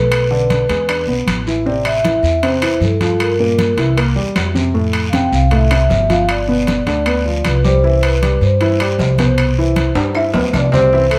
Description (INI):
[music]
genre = Afro-Cuban jazz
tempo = 155 BPM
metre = 4/4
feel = straight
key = C major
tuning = A4 = 440 Hz
[part]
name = vibraphone with soft mallets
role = melody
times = 0.0-11.2 s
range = A4 to G5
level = -20 LUFS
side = equal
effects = none
[part]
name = warm baby grand piano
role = accompaniment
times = 0.0-11.2 s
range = A2 to E5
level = -21 LUFS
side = equal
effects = none
[part]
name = upright bass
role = bass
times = 0.0-11.2 s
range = G1 to G2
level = -19 LUFS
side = equal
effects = none
[part]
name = claves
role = percussion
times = 0.1-11.2 s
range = none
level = -31 LUFS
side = equal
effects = none
[part]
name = congas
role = percussion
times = 0.1-11.2 s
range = none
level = -25 LUFS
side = equal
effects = none
[part]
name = guiro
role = percussion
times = 0.1-11.2 s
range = none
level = -32 LUFS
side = equal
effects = none
[part]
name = timbales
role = percussion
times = 0.1-11.2 s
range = none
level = -26 LUFS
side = equal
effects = none
[part]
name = brilliant trombone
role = second line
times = 10.5-11.2 s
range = A3 to D4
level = -24 LUFS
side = equal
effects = none
[sound]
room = moderate studio reverb, RT60 0.7 s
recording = none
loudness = -15 LUFS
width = mono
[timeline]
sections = 0.0-10.9 A section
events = drum fill 10.0-10.9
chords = 0.1 Bm7; 0.9 E5; 1.7 Am7; 3.2 C7; 4.7 Fmaj7; 6.3 G7; 7.8 Cmaj7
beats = | 0.12 0.50 0.89 1.27 | 1.66 2.04 2.43 2.82 | 3.20 3.59 3.97 4.36 | 4.75 5.13 5.52 5.90 | 6.29 6.68 7.06 7.45 | 7.83 8.22 8.61 8.99 | 9.38 9.77 10.15 10.54 | 10.93